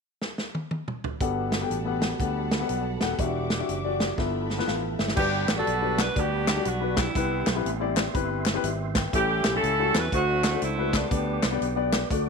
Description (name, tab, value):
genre	uptempo gospel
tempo	121 BPM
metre	4/4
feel	swing 64% on 8ths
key	G major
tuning	A4 = 440 Hz
part	natural country drum kit	drums	0.2-12.3 s	crash cymbal, hi-hat, kick drum, snare drum, toms	-28 LUFS	right 1 dB	none
part	warm concert grand piano	accompaniment	1.2-12.3 s	G2 to G5	-29 LUFS	left 11 dB	none
part	muted studio string section	sustained chords	1.2-5.2 s	D5 to D6	-40 LUFS	equal	none
part	percussive tonewheel organ	sustained chords	1.2-12.3 s	E3 to D6	-35 LUFS	right 12 dB	slow rotary speaker, chorus vibrato
part	fingered electric bass	bass	1.2-12.3 s	Eb1 to E2	-31 LUFS	right 2 dB	none
part	clear saxophone section	melody	5.2-11.9 s	G3 to B4	-26 LUFS	right 2 dB	none
part	group handclap	percussion	5.5-12.0 s	none	-34 LUFS	left 13 dB	none
room	light reverb, studio reverb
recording	1960s-style stereo with parts hard left and right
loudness	-23 LUFS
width	side -5 dB against mid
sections	0.0-1.2 A section; 1.2-5.2 B section; 5.2-12.3 C section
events	drum fill 0.2-1.2, 4.2-5.2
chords	0.0 N.C.; 1.2 Gmaj9; 3.2 Em9; 4.2 G13; 5.2 Gmaj7; 7.2 Cmaj7; 9.1 A7; 10.1 D7; 11.1 G